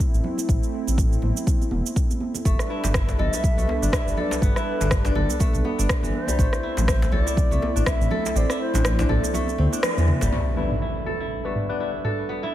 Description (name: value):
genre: afro house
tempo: 122 BPM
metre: 4/4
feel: swing 57% on 16ths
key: unclear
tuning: A4 = 440 Hz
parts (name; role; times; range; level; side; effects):
- warm analog pad; sustained chords; 0.0-12.5 s; G3 to B4; -30 LUFS; left 1 dB; chorus, sidechain pumping
- afro-pop drum kit; drums; 0.0-12.5 s; hi-hat, rim click, shaker, toms; -28 LUFS; right 1 dB; low-pass filter on perc, low-pass filter on snare, low-pass filter on toms, low-pass filter on hats
- electronic kick drum; drums; 0.0-8.0 s; none; -22 LUFS; equal; none
- congas; percussion; 0.0-10.3 s; none; -33 LUFS; right 3 dB; dub echo
- dark detuned saw bass; bass; 0.1-10.3 s; E1 to E2; -23 LUFS; equal; sidechain pumping
- kora; arpeggios; 2.5-12.5 s; E3 to A4; -29 LUFS; equal; sidechain pumping, low-pass filter, tape echo
- djembe; percussion; 2.8-10.3 s; none; -30 LUFS; left 1 dB; none
- bright bansuri; melody; 3.2-9.3 s; B4 to E5; -31 LUFS; left 1 dB; tape echo
- impact; sound effects; 10.3-12.3 s; none; -30 LUFS; equal; none
- bell-like tine electric piano; stabs; 10.6-11.9 s; G3 to B4; -31 LUFS; left 5 dB; phaser, sidechain pumping, low-pass filter, dub echo
room: light reverb, studio reverb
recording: echo-heavy mix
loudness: -20 LUFS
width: side -13 dB against mid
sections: 0.0-10.3 A section; 10.3-12.5 B section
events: kick drops out 8.4-10.3; drum fill 9.8-10.3; band accent 9.8; impact 10.3-12.3; filter sweep on kora 10.3-12.5; filter sweep on tine electric piano 10.3-12.5; filter sweep on analog synth pad 10.3-12.5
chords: 0.0 Am; 2.5 G; 6.4 Am